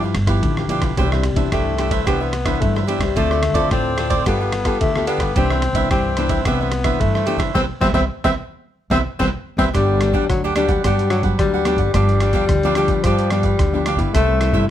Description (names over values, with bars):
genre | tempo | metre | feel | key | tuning
samba and choro | 109 BPM | 4/4 | straight | C major, G major from 9.7 s | A4 = 439 Hz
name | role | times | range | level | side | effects
cavaquinho | accompaniment | 0.0-14.6 s | D4 to F#5 | -23 LUFS | right 6 dB | none
nylon-string guitar | accompaniment | 0.0-14.7 s | G2 to A4 | -23 LUFS | left 3 dB | none
upright bass | bass | 0.0-14.6 s | G1 to C3 | -22 LUFS | right 1 dB | none
trip hop sampler-style drum kit | drums | 0.1-14.7 s | hi-hat, kick drum, ride cymbal, rim click, snare drum | -23 LUFS | right 1 dB | none
breathy tenor saxophone | second line | 1.0-14.7 s | F3 to C4 | -22 LUFS | left 4 dB | none
room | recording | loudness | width
light reverb | none | -16 LUFS | side -11 dB against mid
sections
0.0-9.7 A section; 9.7-14.7 B section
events
band accent 7.6-9.7; drum fill 9.5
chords
0.0 G13; 1.0 Cmaj9; 3.2 Dm7; 4.3 G9; 5.4 Cmaj9; 9.7 Gmaj7; 11.9 G7; 14.1 Cmaj7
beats
0.42 | 0.97 1.52 2.07 2.62 | 3.16 3.71 4.26 4.81 | 5.36 5.91 6.45 7.00 | 7.55 8.10 8.65 9.20 | 9.75 10.30 10.85 11.40 | 11.95 12.49 13.04 13.60 | 14.14 14.69